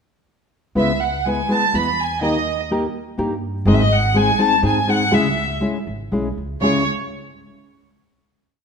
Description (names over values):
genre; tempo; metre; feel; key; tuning
mexican folk, mariachi; 123 BPM; 3/4; rubato; C# minor; A4 = 442 Hz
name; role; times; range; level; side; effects
rich chamber violin section; melody; 0.8-6.8 s; C#5 to B5; -19 LUFS; equal; none
nylon-string guitar; accompaniment; 0.8-6.8 s; G#2 to B4; -20 LUFS; left 2 dB; none
upright bass; bass; 0.8-6.8 s; G#1 to G#2; -24 LUFS; right 1 dB; none
room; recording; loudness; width
moderate scoring stage reverb, RT60 1.6 s; minimal, uncompressed stereo recording; -17 LUFS; side -6 dB against mid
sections
0.8-6.6 A section; 6.6-8.1 final chord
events
none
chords
0.8 C#m7; 2.2 D#; 3.7 G#; 5.1 C#m